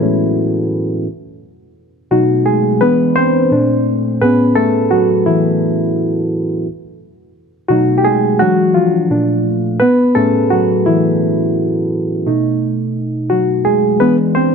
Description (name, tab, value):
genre	soul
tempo	86 BPM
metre	4/4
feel	swing 54% on 16ths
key	A major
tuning	A4 = 440 Hz
part	barky reed electric piano	solo	0.0-14.5 s	A2 to C5	-12 LUFS	equal	overdrive, phaser
room	light reverb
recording	none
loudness	-12 LUFS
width	side -6 dB against mid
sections	0.0-14.5 A section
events	reed electric piano solo 0.0-14.5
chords	0.0 Amaj9; 1.1 B6; 2.8 E7; 3.5 Bbmaj9; 4.2 Amaj9; 6.7 B6; 8.4 E9; 9.1 Bbmaj7; 9.8 Amaj9; 12.3 B6; 14.0 E7